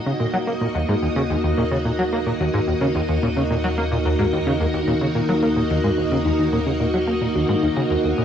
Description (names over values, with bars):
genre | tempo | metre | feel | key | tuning
ambient, sequencer-driven space music | 109 BPM | 4/4 | straight | Eb minor | A4 = 440 Hz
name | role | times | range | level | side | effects
string machine, full ensemble | sustained chords | 0.0-8.2 s | Bb3 to Eb5 | -22 LUFS | equal | ensemble chorus, cassette tape
thumb-piano-like synth pluck | arpeggios | 0.0-8.2 s | Eb4 to Eb6 | -31 LUFS | left 6 dB | none
analog drone | bass | 1.0-8.2 s | Eb2 | -28 LUFS | equal | chorus
plucky analog bass | riff | 0.1-8.2 s | Eb2 to Bb3 | -22 LUFS | equal | lush chorus, cassette tape, ping-pong delay
room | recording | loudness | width
wet studio reverb, RT60 0.5 s | home recording on cassette | -18 LUFS | side -9 dB against mid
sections
0.0-8.2 A section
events
none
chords
0.0 Ebm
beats
0.34 0.89 1.44 | 1.99 2.54 3.09 3.64 | 4.19 4.74 5.29 5.84 | 6.39 6.94 7.49 8.04